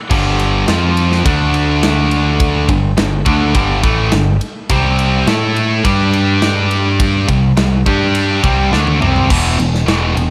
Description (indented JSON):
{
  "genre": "heavy metal",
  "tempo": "105 BPM",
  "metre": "4/4",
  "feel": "straight",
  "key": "unclear",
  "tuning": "A4 = 440 Hz",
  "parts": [
    { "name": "high-gain distorted guitar", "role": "riff", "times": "0.1-10.3 s", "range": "E2 to A4", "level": "-17 LUFS", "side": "equal", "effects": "distortion" },
    { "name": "growling picked electric bass", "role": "bass", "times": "0.1-10.3 s", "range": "E1 to A2", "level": "-18 LUFS", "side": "equal", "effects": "overdrive" },
    { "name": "tight metal drum kit", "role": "drums", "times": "0.1-10.3 s", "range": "crash cymbal, kick drum, ride cymbal, snare drum, toms", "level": "-20 LUFS", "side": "equal", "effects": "none" }
  ],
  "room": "light reverb",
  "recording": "dark, warm production",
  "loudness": "-14 LUFS",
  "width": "mono",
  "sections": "0.0-9.3 A section; 9.3-10.3 B section",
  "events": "drum fill 8.7-9.3",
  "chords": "0.1 G5; 0.7 F5; 1.3 D5; 2.7 G5; 4.7 C5; 5.3 A5; 5.8 G5; 7.3 C5; 7.9 G5; 8.4 C5; 9.3 E5"
}